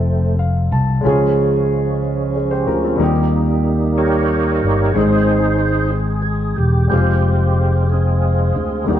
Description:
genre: gospel.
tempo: 61 BPM (dotted quarters).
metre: 6/8.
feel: straight.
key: unclear.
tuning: A4 = 440 Hz.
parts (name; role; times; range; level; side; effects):
warm upright piano; accompaniment; 0.0-9.0 s; Ab2 to A5; -21 LUFS; left 1 dB; none.
percussive tonewheel organ; sustained chords; 0.0-9.0 s; F3 to Db5; -19 LUFS; right 2 dB; overdrive, chorus vibrato, slow rotary speaker.
fingered electric bass; bass; 0.0-9.0 s; Fb1 to Eb2; -17 LUFS; equal; none.
room: wet stone room reverb, RT60 1.3 s.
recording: band playing live in one room, nothing above 7.8 kHz.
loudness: -14 LUFS.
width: side -10 dB against mid.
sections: 0.0-9.0 A section.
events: tonewheel organ solo 0.0-9.0; upright piano fill 0.1-1.0.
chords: 0.0 F7; 1.0 Db; 3.0 Eb; 5.0 Ab; 6.9 Fm.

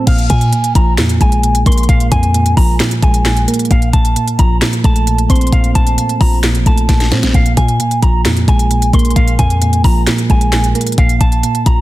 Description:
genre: hip hop, trap.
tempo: 132 BPM.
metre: 4/4.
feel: half-time.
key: unclear.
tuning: A4 = 439 Hz.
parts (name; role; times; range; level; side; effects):
electric guitar with an envelope filter; melody; 0.0-11.8 s; F5 to C6; -19 LUFS; equal; spring reverb.
soft electric-piano-like synth keys; accompaniment; 0.0-11.8 s; Bb2 to C4; -16 LUFS; right 2 dB; chorus.
warm 808-style bass; bass; 0.1-11.8 s; A1 to Bb2; -14 LUFS; left 1 dB; none.
trap drum kit; drums; 0.1-11.8 s; crash cymbal, handclaps, hi-hat, kick drum, snare drum; -14 LUFS; left 1 dB; none.
room: digital ambience.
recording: dense, heavily limited modern master.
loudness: -10 LUFS.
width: side -16 dB against mid.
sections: 0.1-11.8 A section.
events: drum fill 6.9-7.3.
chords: 0.1 Bb5; 3.7 F/Bb; 7.3 Bb5; 11.0 F/Bb.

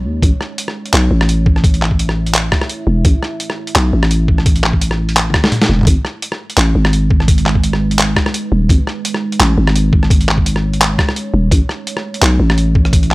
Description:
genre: half-time drum and bass.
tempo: 170 BPM.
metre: 4/4.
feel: swing 55% on 16ths, half-time.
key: unclear.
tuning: A4 = 440 Hz.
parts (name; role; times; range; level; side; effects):
deep dark ambient pad; sustained chords; 0.0-13.1 s; G#3 to E5; -24 LUFS; right 2 dB; chorus, built-in reverb, sidechain pumping.
growling 808-style bass; bass; 0.0-13.1 s; D#1 to D#2; -14 LUFS; equal; none.
boom bap sampler-style drum kit; drums; 0.2-13.1 s; handclaps, hi-hat, rim click, snare drum, toms; -16 LUFS; equal; none.
electronic kick drum; drums; 0.2-13.0 s; none; -13 LUFS; equal; none.
room: little or no reverb.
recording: dry, gritty hardware recording.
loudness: -11 LUFS.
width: side -22 dB against mid.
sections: 0.0-13.1 A section.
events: drum fill 5.3-5.9.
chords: 0.2 A; 5.9 G#m; 11.5 A.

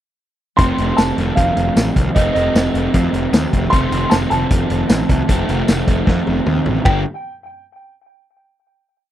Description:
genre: indie rock.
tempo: 154 BPM.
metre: 4/4.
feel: straight.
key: unclear.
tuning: A4 = 438 Hz.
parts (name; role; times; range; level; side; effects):
dark upright piano; melody; 0.6-7.0 s; Eb5 to C6; -21 LUFS; right 1 dB; tape echo.
raw garage guitar; riff; 0.6-7.0 s; F2 to G4; -19 LUFS; right 1 dB; overdrive.
fuzz picked electric bass; bass; 0.6-7.0 s; F1 to F2; -20 LUFS; equal; overdrive.
vintage drum kit; drums; 0.6-6.9 s; hi-hat, kick drum, ride cymbal, snare drum, tambourine, toms; -17 LUFS; equal; none.
room: little or no reverb.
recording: dry, close 1970s-style studio recording.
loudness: -14 LUFS.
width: side -12 dB against mid.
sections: 0.6-6.8 pre-chorus; 6.8-8.4 final chord.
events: drum fill 6.1-6.8.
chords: 0.6 F7; 6.8 G5.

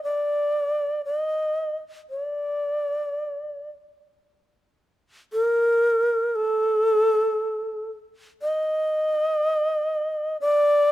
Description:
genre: japanese traditional.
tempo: 53-62 BPM.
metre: 4/4.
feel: rubato.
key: unclear.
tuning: A4 = 439 Hz.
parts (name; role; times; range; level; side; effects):
reedy long shakuhachi; solo; 0.0-10.9 s; A4 to Eb5; -21 LUFS; equal; none.
room: little or no reverb.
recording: close, detailed microphones.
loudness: -21 LUFS.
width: side -15 dB against mid.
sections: 0.0-4.3 A section; 4.3-10.9 B section.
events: none.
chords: none.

